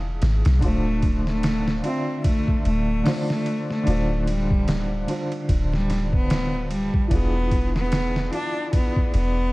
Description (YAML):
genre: trip hop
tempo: 74 BPM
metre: 4/4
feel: swing 58% on 16ths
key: D dorian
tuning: A4 = 444 Hz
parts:
  - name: felt-muted upright piano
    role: accompaniment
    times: 0.0-9.5 s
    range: D3 to E5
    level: -29 LUFS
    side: equal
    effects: tremolo
  - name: soft 808-style bass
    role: bass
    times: 0.0-9.5 s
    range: D1 to B1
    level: -23 LUFS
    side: equal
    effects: none
  - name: trip hop sampler-style drum kit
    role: drums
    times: 0.2-9.4 s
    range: hi-hat, kick drum, ride cymbal, snare drum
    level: -24 LUFS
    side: equal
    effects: none
  - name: rich cello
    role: melody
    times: 0.6-9.5 s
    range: G3 to D4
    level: -26 LUFS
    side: equal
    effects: tape echo
room: digital ambience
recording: dark, warm production, vinyl crackle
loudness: -20 LUFS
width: side -21 dB against mid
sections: 0.0-9.5 A section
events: none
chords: 0.0 E7b9; 0.6 Dm7; 7.1 E7b9